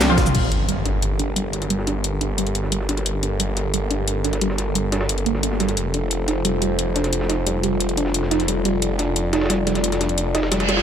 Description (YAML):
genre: dark technical drum and bass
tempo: 177 BPM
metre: 4/4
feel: straight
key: G minor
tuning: A4 = 440 Hz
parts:
  - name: dark analog pad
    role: sustained chords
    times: 0.0-10.8 s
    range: C4 to G5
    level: -27 LUFS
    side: equal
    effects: chorus, vintage 12-bit sampler grit, sidechain pumping
  - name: soft round pluck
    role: arpeggios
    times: 0.0-10.8 s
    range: G3 to Eb4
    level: -25 LUFS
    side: right 2 dB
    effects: chorus, sidechain pumping, ping-pong delay
  - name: snarling distorted saw bass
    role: bass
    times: 0.0-10.8 s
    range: F1 to C2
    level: -24 LUFS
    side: equal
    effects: distortion, overdrive, sidechain pumping
  - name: drum and bass drum kit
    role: drums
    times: 0.0-10.8 s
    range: cabasa, crash cymbal, hi-hat, snare drum, toms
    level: -24 LUFS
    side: left 2 dB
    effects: none
  - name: jungle sampler-style drum kit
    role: drums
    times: 0.0-10.8 s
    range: ride cymbal, snare drum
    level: -31 LUFS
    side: right 1 dB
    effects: high-pass filter on cymbals, low-pass filter on cymbals, high-pass filter on snare, low-pass filter on snare
  - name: impact and reverse cymbal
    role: sound effects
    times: 0.3-1.7, 10.6-10.8 s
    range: none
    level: -24 LUFS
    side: equal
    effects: none
room: light reverb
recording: none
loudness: -19 LUFS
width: side -8 dB against mid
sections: 0.3-10.8 A section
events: drum fill 0.0-0.3; band accent 0.0; impact 0.3-1.7; reverse cymbal 10.6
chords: 0.3 Gmadd9; 5.8 F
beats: 0.01 | 0.35 0.69 1.02 1.36 | 1.70 2.04 2.38 2.72 | 3.06 3.40 3.74 4.08 | 4.42 4.75 5.09 5.43 | 5.77 6.11 6.45 6.79 | 7.13 7.46 7.80 8.14 | 8.48 8.82 9.16 9.50 | 9.84 10.18 10.52